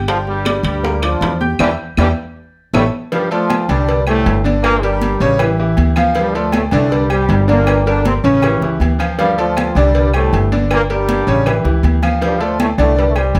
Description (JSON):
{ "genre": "latin, salsa", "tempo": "158 BPM", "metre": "4/4", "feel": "straight", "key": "D minor", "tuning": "A4 = 439 Hz", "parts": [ { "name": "bright concert grand piano", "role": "accompaniment", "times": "0.0-13.4 s", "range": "C#3 to G6", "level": "-20 LUFS", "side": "equal", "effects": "none" }, { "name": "upright bass", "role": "bass", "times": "0.0-13.4 s", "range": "G1 to E2", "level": "-20 LUFS", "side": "equal", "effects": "none" }, { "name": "bright trombone section", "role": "melody", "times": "0.1-13.4 s", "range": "G2 to F4", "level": "-21 LUFS", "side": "equal", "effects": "none" }, { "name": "bongos and cowbell", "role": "percussion", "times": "0.1-13.4 s", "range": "none", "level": "-27 LUFS", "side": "equal", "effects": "none" }, { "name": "congas", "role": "percussion", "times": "0.1-13.4 s", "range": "none", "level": "-25 LUFS", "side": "equal", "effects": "none" }, { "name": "timbales and agogo bells", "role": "percussion", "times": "0.1-13.4 s", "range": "none", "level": "-28 LUFS", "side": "equal", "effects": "none" }, { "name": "claves", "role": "percussion", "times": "0.5-13.4 s", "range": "none", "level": "-31 LUFS", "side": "equal", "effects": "none" } ], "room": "moderate studio reverb, RT60 0.7 s", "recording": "none", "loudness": "-15 LUFS", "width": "mono", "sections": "0.0-3.1 A section; 3.1-13.4 B section", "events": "drum fill 1.6-3.1; band accent 1.6-3.1", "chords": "0.1 Gm7; 1.6 Em7; 2.4 A; 3.1 Dm; 3.9 Csus2; 4.6 Gm; 5.4 A5; 6.2 Dm; 6.9 Csus2; 7.7 Gm; 8.4 A7; 9.2 Dm; 9.9 Csus2; 10.7 Gm; 11.5 A7; 12.2 Dm" }